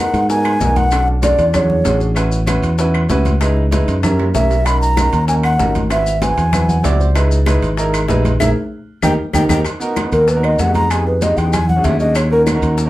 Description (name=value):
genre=Afro-Cuban jazz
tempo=192 BPM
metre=4/4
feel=straight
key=G# minor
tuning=A4 = 440 Hz
part: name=breathy alto ocarina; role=melody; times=0.0-2.0, 4.3-12.4 s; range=A#4 to B5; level=-17 LUFS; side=equal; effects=none
part: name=warm grand piano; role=accompaniment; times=0.0-12.9 s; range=B3 to F#5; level=-20 LUFS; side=right 1 dB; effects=none
part: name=modern bright fingered electric bass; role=bass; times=0.1-12.9 s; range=G#1 to G#2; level=-16 LUFS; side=equal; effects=none
part: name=congas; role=percussion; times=0.1-12.9 s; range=none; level=-22 LUFS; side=left 1 dB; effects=none
part: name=maracas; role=percussion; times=0.1-12.9 s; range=none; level=-31 LUFS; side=left 4 dB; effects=none
part: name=timbales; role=percussion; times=0.1-12.8 s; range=none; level=-26 LUFS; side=right 4 dB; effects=none
part: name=bongos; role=percussion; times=0.3-12.9 s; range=none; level=-28 LUFS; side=left 4 dB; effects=none
part: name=claves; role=percussion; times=0.4-12.6 s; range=none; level=-28 LUFS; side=left 1 dB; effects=none
room=wet club reverb, RT60 0.6 s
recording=heard from further back in the room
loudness=-13 LUFS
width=side -16 dB against mid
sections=0.0-9.7 A section; 9.7-12.9 B section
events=drum fill 4.0-4.7, 8.9-9.7; grand piano fill 6.5-7.2, 9.0-9.7; band accent 8.4-9.7; ocarina solo 9.7-12.9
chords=0.0 G#m7; 0.9 Bm9; 1.5 E13; 2.2 A6; 3.4 C#m7; 4.0 F#7b9; 4.7 Bmaj7; 5.9 G#7alt; 7.2 C#m9; 8.4 E; 9.0 D#; 9.7 G#m7; 10.9 Fm7b5; 11.5 E13; 12.2 D#m7